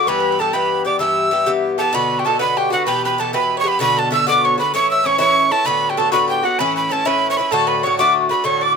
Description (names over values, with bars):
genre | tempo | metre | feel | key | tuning
celtic folk, Celtic slide | 129 BPM (dotted quarters) | 12/8 | straight | E dorian | A4 = 439 Hz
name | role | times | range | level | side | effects
breathy bright mid whistle | melody | 0.0-8.8 s | F#5 to E6 | -17 LUFS | right 3 dB | none
mandolin | second line | 0.0-8.8 s | F#4 to E5 | -22 LUFS | right 2 dB | none
wooden flute | second line | 0.0-1.8 s | A4 to E5 | -23 LUFS | left 9 dB | none
Irish bouzouki | accompaniment | 0.0-8.8 s | G2 to G4 | -20 LUFS | left 5 dB | none
room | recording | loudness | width
light reverb | close, detailed microphones | -14 LUFS | side -5 dB against mid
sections
0.0-1.9 A section; 1.9-8.8 A section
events
none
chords
0.1 Em; 1.9 Bm; 2.9 Em; 3.8 Bm; 4.7 A; 5.7 Bm7; 6.6 A; 7.5 D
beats
| 0.08 0.55 1.01 1.48 | 1.94 2.41 2.87 3.34 | 3.80 4.27 4.73 5.20 | 5.66 6.13 6.59 7.06 | 7.52 7.99 8.45